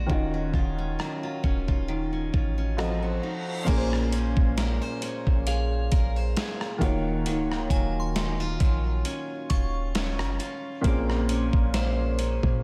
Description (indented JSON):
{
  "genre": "contemporary R&B",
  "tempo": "67 BPM",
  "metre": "4/4",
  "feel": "swing 54% on 16ths",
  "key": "Bb minor",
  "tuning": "A4 = 439 Hz",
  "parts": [
    { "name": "felt-muted upright piano", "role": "accompaniment", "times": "0.0-12.6 s", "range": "Bb2 to Eb5", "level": "-33 LUFS", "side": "equal", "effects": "none" },
    { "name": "picked steel-string acoustic guitar", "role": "arpeggios", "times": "0.0-12.6 s", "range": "Bb2 to C5", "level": "-36 LUFS", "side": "equal", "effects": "diffuse ambient delay" },
    { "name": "clean 808-style bass", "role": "bass", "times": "0.0-12.6 s", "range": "Db1 to Bb2", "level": "-30 LUFS", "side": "equal", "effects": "none" },
    { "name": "dusty soul sampler-style drum kit", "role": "drums", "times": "0.1-12.6 s", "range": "crash cymbal, hi-hat, kick drum, rim click, snare drum", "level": "-29 LUFS", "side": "equal", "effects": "none" },
    { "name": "reverse cymbal", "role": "sound effects", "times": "3.1-3.7 s", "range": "none", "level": "-44 LUFS", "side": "equal", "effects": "none" },
    { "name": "glassy synth bell", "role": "texture", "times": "3.7-11.2 s", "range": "F5 to Db6", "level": "-42 LUFS", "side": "equal", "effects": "chorus, diffuse ambient delay" }
  ],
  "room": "light reverb",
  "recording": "none",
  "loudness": "-26 LUFS",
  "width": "mono",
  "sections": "0.0-3.7 A section; 3.7-12.6 B section",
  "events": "felt piano fill 2.3-3.7; reverse cymbal 3.1-3.7",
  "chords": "0.1 Ebm9; 2.8 F7b9; 3.7 Bbm9; 6.8 Ebm9; 10.8 Bbm9"
}